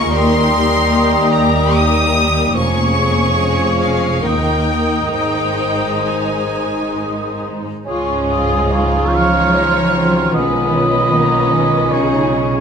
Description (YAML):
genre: classical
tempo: 64-78 BPM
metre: 3/4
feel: rubato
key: Ab major, Db major from 7.9 s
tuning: A4 = 440 Hz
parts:
  - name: rich chamber violin section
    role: melody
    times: 0.0-12.6 s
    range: Db4 to Eb6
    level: -22 LUFS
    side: left 2 dB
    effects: none
  - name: clear clarinet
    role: second line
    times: 0.0-12.6 s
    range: Db4 to C5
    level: -25 LUFS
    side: left 2 dB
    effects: none
  - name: rich chamber violin section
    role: second line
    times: 0.0-12.6 s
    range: Eb4 to Db5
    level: -24 LUFS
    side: left 2 dB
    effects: none
  - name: mellow bassoon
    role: accompaniment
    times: 0.0-12.6 s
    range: Eb3 to F4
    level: -22 LUFS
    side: right 2 dB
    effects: none
  - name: rich chamber viola section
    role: accompaniment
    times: 0.0-12.6 s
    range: F3 to Eb4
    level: -21 LUFS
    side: left 2 dB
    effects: none
  - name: warm chamber cello section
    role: bass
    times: 0.0-12.6 s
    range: Eb2 to F3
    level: -22 LUFS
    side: right 2 dB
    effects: none
  - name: warm chamber double bass section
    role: bass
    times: 0.0-12.6 s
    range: F1 to Eb2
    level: -22 LUFS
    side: right 2 dB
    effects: none
  - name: hollow flute section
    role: second line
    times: 0.1-12.6 s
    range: Ab5 to Eb6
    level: -23 LUFS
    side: left 1 dB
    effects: none
  - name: mellow cor anglais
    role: second line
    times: 7.9-12.6 s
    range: Ab4 to F5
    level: -18 LUFS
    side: right 1 dB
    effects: none
  - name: dark French horn section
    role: sustained chords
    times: 7.9-12.6 s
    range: Db4 to F4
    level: -23 LUFS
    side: left 3 dB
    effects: none
room: wet recital hall reverb, RT60 1.6 s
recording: minimal, uncompressed stereo recording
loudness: -13 LUFS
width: side -6 dB against mid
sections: 0.0-7.9 A section; 7.9-12.6 B section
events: none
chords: 0.1 Eb; 2.6 Db/F; 4.2 Eb; 5.1 Ab; 7.9 Db; 10.4 Db7/Cb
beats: | 0.10 0.89 1.75 | 2.55 3.37 4.22 | 5.13 6.06 6.97 | 7.86 8.71 9.56 | 10.35 11.14 11.91